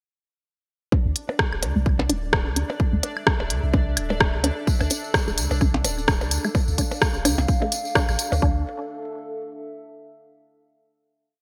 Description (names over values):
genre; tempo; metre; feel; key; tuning
minimal techno; 128 BPM; 4/4; swing 57% on 16ths; D minor; A4 = 440 Hz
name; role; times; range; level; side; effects
resonant blip pluck; riff; 0.9-8.6 s; A3 to D4; -31 LUFS; equal; chorus, phaser, sidechain pumping, digital delay
electronic kick drum; drums; 0.9-8.5 s; none; -25 LUFS; equal; none
percussion blips and claves; percussion; 0.9-8.4 s; none; -32 LUFS; equal; overdrive, digital delay
pulsing gated texture; texture; 1.0-8.4 s; D4 to D5; -40 LUFS; equal; chorus, built-in reverb, sidechain pumping
warbly tape-like pad; texture; 2.3-10.3 s; D4 to F5; -36 LUFS; equal; chorus, built-in reverb, sidechain pumping
punchy sub bass; bass; 1.1-8.6 s; D1 to D2; -28 LUFS; equal; sidechain pumping
house drum kit; drums; 1.2-8.3 s; hi-hat, rim click; -26 LUFS; equal; gated reverb
tambourine; percussion; 4.7-8.4 s; none; -33 LUFS; equal; none
room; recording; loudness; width
light reverb, digital ambience; bright 1980s-style digital production; -23 LUFS; mono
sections
0.9-8.4 groove; 8.4-10.3 final chord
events
filter sweep on synth arpeggio sound 0.9-8.4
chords
0.9 Dm7; 8.4 D5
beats
| 0.92 1.39 1.86 2.33 | 2.80 3.27 3.73 4.20 | 4.67 5.14 5.61 6.08 | 6.55 7.02 7.49 7.95 | 8.42 8.89 9.36 9.83